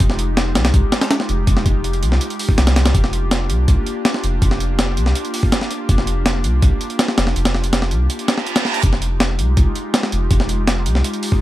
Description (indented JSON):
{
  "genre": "drum and bass, jungle",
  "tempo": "163 BPM",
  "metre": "4/4",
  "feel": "straight",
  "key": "F dorian",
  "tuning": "A4 = 440 Hz",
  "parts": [
    { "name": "airy breathy pad", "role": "sustained chords", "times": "0.0-11.4 s", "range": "Ab3 to G4", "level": "-25 LUFS", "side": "equal", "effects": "chorus" },
    { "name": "soft dub sub bass", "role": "bass", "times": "0.0-11.0 s", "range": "F1 to C2", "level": "-18 LUFS", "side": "equal", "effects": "none" },
    { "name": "breakbeat sampler-style drum kit", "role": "drums", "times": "0.0-11.4 s", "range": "hi-hat, kick drum, snare drum", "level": "-17 LUFS", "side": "equal", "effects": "small room ambience" },
    { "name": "reverse cymbal", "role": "sound effects", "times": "8.2-8.8 s", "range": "none", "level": "-23 LUFS", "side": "right 5 dB", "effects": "none" }
  ],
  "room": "little or no reverb",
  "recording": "vinyl crackle",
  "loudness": "-15 LUFS",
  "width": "side -15 dB against mid",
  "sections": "0.0-11.4 A section",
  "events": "reverse cymbal 8.2-8.8",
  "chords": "0.0 Fm9; 2.9 Gm7/F; 8.8 Fm9"
}